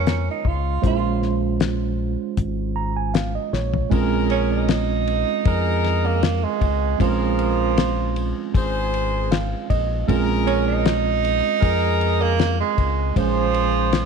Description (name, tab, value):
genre	straight-eighth soul blues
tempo	78 BPM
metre	4/4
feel	swing 54% on 16ths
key	Bb minor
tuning	A4 = 440 Hz
part	mellow tenor saxophone	second line	0.0-14.1 s	F3 to F4	-23 LUFS	right 8 dB	none
part	mellow tine electric piano	accompaniment	0.0-14.1 s	F3 to Bb5	-25 LUFS	right 11 dB	medium stereo tremolo
part	deep dub fingered electric bass	bass	0.0-14.1 s	Ab1 to F2	-24 LUFS	left 2 dB	none
part	cloth-damped thuddy drum kit	drums	0.1-14.1 s	hi-hat, kick drum, ride cymbal, snare drum, toms	-25 LUFS	left 5 dB	none
part	bright horn section	sustained chords	3.9-13.9 s	Ab4 to C5	-28 LUFS	left 4 dB	none
room	light reverb, small room ambience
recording	1960s-style stereo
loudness	-18 LUFS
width	side -6 dB against mid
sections	0.0-3.9 A section; 3.9-14.1 B section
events	tine electric piano fill 2.4-3.9, 8.9-10.1; drum fill 3.5-3.9; tenor saxophone solo 3.9-14.1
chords	0.0 Bbm7